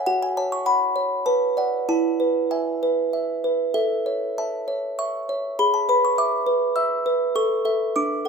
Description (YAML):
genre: classical, lullaby for music box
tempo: 100 BPM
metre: 3/4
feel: rubato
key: A major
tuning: A4 = 440 Hz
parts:
  - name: music box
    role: solo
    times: 0.0-8.3 s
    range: D4 to E6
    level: -20 LUFS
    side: right 1 dB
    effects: none
room: moderate recital hall reverb, RT60 1.5 s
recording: minimal, uncompressed stereo recording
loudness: -20 LUFS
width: side -5 dB against mid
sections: 0.0-8.3 A section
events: none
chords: 0.1 F#5; 1.3 Bm; 1.9 E; 3.7 A; 5.6 E7/G#; 7.3 A